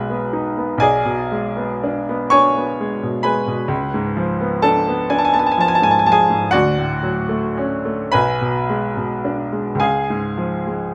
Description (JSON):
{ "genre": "classical, romantic nocturne for solo piano", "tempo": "35-44 BPM (dotted quarters)", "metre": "6/8", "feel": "rubato", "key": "unclear", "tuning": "A4 = 439 Hz", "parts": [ { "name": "clear baby grand piano", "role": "solo", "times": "0.0-10.9 s", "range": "B1 to C#6", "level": "-18 LUFS", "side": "equal", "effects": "none" } ], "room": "light reverb", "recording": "close, detailed microphones", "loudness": "-18 LUFS", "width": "mono", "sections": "0.0-10.9 A section", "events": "none", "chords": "0.0 G#m/B; 0.8 G#dim/B; 3.7 C#7b9; 6.5 Dmaj7; 8.2 G#dim/B; 9.8 C#" }